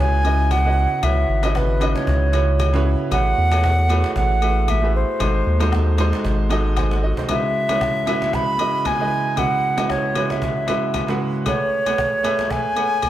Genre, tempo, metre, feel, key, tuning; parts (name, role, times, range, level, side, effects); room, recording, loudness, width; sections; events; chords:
amapiano; 115 BPM; 4/4; swing 55% on 16ths; C# minor; A4 = 440 Hz
wooden flute; melody; 0.0-13.1 s; B4 to B5; -22 LUFS; right 1 dB; tape echo
warm concert grand piano; accompaniment; 0.0-13.1 s; C#3 to G#5; -23 LUFS; right 3 dB
saturated sub bass; bass; 0.0-7.1 s; G#1 to E2; -18 LUFS; equal
cajon; drums; 0.1-13.1 s; -30 LUFS; equal
agogo bells and woodblock; percussion; 0.2-13.1 s; -29 LUFS; left 10 dB
light reverb, small room ambience; -17 LUFS; side -13 dB against mid
0.0-13.1 A section
0.0 C#m11; 3.1 Amaj13; 5.2 G#7b9; 7.3 C#m11; 11.5 Amaj13